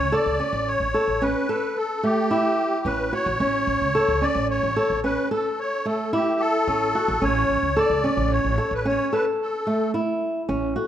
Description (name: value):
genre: contemporary instrumental, chamber music in an uneven meter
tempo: 110 BPM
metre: 7/4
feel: straight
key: A mixolydian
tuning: A4 = 440 Hz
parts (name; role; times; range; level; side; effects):
- musette accordion; melody; 0.0-9.9 s; G4 to D5; -24 LUFS; left 1 dB; none
- flamenco guitar; arpeggios; 0.0-10.9 s; A3 to A4; -23 LUFS; equal; none
- upright bass; bass; 0.0-10.7 s; A1 to C#2; -28 LUFS; right 1 dB; none
- large celesta; texture; 10.8-10.9 s; A4; -28 LUFS; left 9 dB; none
room: moderate scoring stage reverb, RT60 1.6 s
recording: none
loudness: -20 LUFS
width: side -10 dB against mid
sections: 0.0-10.9 A section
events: none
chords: 0.0 A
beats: 0.13 0.68 1.22 1.77 2.31 2.86 | 3.40 3.95 4.49 5.04 5.58 6.13 6.67 | 7.22 7.76 8.31 8.85 9.40 9.94 10.49